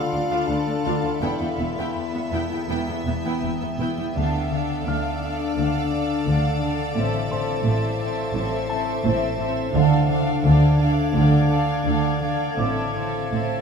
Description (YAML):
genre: cinematic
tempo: 84 BPM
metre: 4/4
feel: uneven beats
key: unclear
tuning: A4 = 441 Hz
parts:
  - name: clear clarinet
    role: second line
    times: 0.0-3.4 s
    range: E4 to A4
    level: -32 LUFS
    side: left 4 dB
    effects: none
  - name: warm chamber violin section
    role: second line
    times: 0.0-13.6 s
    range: A4 to A5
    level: -32 LUFS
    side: right 1 dB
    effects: none
  - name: rich studio viola section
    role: accompaniment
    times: 0.0-13.6 s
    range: B3 to F4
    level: -30 LUFS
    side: right 1 dB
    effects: none
  - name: icy glass pad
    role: sustained chords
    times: 0.0-13.6 s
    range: B3 to G5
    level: -30 LUFS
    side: right 1 dB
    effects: chorus, built-in reverb
  - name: concert harp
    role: riff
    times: 0.0-13.6 s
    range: E2 to D4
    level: -26 LUFS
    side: left 8 dB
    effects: none
  - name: warm symphonic cello section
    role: bass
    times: 0.0-13.6 s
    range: D2 to D3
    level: -25 LUFS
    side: right 4 dB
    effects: none
  - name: warm grand piano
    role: texture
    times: 0.0-13.6 s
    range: C5 to F6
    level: -36 LUFS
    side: left 2 dB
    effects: none
  - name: warm symphonic violin section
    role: texture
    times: 0.0-13.6 s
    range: A5 to A6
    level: -36 LUFS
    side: left 3 dB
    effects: none
  - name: warm symphonic violin section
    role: melody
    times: 0.1-13.6 s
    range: D5 to G5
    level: -33 LUFS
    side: left 2 dB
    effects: none
  - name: warm symphonic double bass section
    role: bass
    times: 0.1-13.6 s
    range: E1 to D2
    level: -28 LUFS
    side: right 4 dB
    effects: none
room: wet recital hall reverb, RT60 1.6 s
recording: minimal, uncompressed stereo recording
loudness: -20 LUFS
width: side -6 dB against mid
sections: 0.0-4.2 A section; 4.2-13.6 B section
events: none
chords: 0.0 Dm; 1.2 Em; 4.2 Dm; 7.0 Am; 9.8 Dm; 12.6 Am